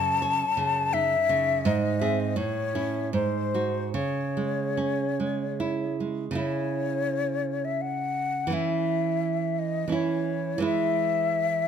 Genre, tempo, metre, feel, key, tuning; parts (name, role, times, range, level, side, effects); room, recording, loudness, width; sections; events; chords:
romantic duo for flute and classical guitar; 72-89 BPM; 3/4; rubato; C# minor; A4 = 441 Hz
mellow hollow concert flute; melody; 0.0-11.7 s; B#4 to A5; -27 LUFS; left 5 dB
nylon-string guitar; accompaniment; 0.0-11.7 s; F#2 to C#5; -27 LUFS; right 5 dB
moderate recital hall reverb, RT60 1.6 s; close, detailed microphones; -24 LUFS; side -8 dB against mid
0.0-6.4 A section; 6.4-11.7 B section
0.0 D#m7b5/F#; 1.7 G#; 2.4 A; 3.1 G#7; 4.0 C#m; 8.5 C#m/E; 10.6 E